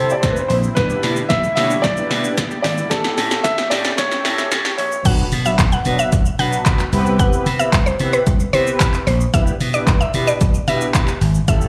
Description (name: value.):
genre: dance-pop.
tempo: 112 BPM.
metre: 4/4.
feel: straight.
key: unclear.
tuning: A4 = 441 Hz.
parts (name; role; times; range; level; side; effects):
warm concert grand piano; melody; 0.0-5.0 s; A4 to E5; -23 LUFS; equal; slapback echo, digital delay.
mellow synth brass; accompaniment; 0.0-11.7 s; F#3 to C#5; -27 LUFS; equal; chorus, phaser, sidechain pumping, slapback echo.
soft supersaw; sustained chords; 0.0-5.0 s; C3 to E4; -33 LUFS; equal; sidechain pumping.
slap bass; bass; 0.0-11.7 s; G#1 to C3; -23 LUFS; equal; sidechain pumping.
downlifter and impact; sound effects; 0.0-0.8, 5.1-7.2 s; none; -36 LUFS; equal; none.
house drum kit; drums; 0.1-11.7 s; crash cymbal, handclaps, hi-hat, kick drum, shaker, snare drum; -21 LUFS; equal; none.
unison pluck; arpeggios; 0.8-5.0 s; E3 to E5; -36 LUFS; equal; none.
mallet-like synth pluck; melody; 5.1-11.6 s; B4 to F#5; -24 LUFS; equal; chorus, sidechain pumping, slapback echo, digital delay.
room: light reverb.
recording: live gig heard through the venue's PA, club reverb, high-pass filter.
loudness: -17 LUFS.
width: mono.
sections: 0.0-5.1 A section; 5.1-11.7 B section.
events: build-up 0.0-5.1; drum fill 0.0-5.1; filter sweep 0.0-5.1; drop 5.1-11.7; impact 5.1-7.2.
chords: 0.0 C; 0.8 Em7/B; 2.9 A7; 5.1 Bm; 6.9 Cmaj7; 9.3 Em7/B.